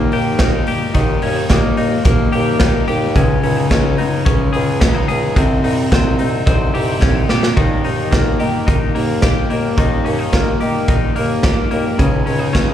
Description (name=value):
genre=jangly indie pop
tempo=109 BPM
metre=4/4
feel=straight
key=unclear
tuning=A4 = 438 Hz
part: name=electric guitar through a small old amp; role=accompaniment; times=0.0-12.7 s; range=C3 to Eb4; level=-24 LUFS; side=right 4 dB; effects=wide subtle chorus, slapback echo
part: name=twelve-string electric guitar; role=arpeggios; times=0.0-12.7 s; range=C3 to Ab4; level=-19 LUFS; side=left 5 dB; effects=slapback echo
part: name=warm bassoon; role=bass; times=0.0-12.7 s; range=C2 to Eb3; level=-22 LUFS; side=equal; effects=none
part: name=raw garage drum kit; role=drums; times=0.1-12.7 s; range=hi-hat, kick drum, ride cymbal, snare drum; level=-16 LUFS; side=right 1 dB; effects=none
room=light reverb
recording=live gig heard through the venue's PA, club reverb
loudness=-13 LUFS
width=side -10 dB against mid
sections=0.0-7.6 A section; 7.6-12.7 B section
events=drum fill 7.0-7.6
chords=0.0 Eb; 3.2 Dbsus2; 5.4 Cm; 7.6 Eb; 12.0 Dbsus2